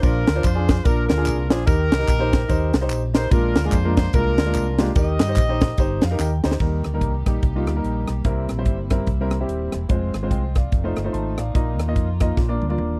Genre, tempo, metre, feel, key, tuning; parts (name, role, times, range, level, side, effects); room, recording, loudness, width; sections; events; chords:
uptempo gospel; 146 BPM; 4/4; swing 60% on 8ths; Eb major; A4 = 440 Hz
warm horn section; melody; 0.0-6.2 s; D4 to Eb5; -28 LUFS; equal
warm concert grand piano; accompaniment; 0.0-13.0 s; Bb2 to C6; -28 LUFS; equal
fingered electric bass; bass; 0.0-13.0 s; Eb1 to G2; -26 LUFS; equal
crisp fusion drum kit; drums; 0.0-12.9 s; crash cymbal, hi-hat, kick drum, ride cymbal, rim click, snare drum, toms; -23 LUFS; equal
tambourine and handclaps; percussion; 0.0-6.5 s; -40 LUFS; equal
warm studio string section; sustained chords; 6.6-13.0 s; F3 to G4; -38 LUFS; equal
little or no reverb; dry, close 1970s-style studio recording; -21 LUFS; mono
0.0-6.6 A section; 6.6-13.0 B section
grand piano fill 5.8-6.6; drum fill 6.2-6.6, 12.4-13.0
0.0 Bb; 1.7 Eb; 3.3 Bb7; 5.0 Eb; 8.2 C7; 9.9 Fm; 10.7 F7; 11.6 Bbsus4; 12.4 Bb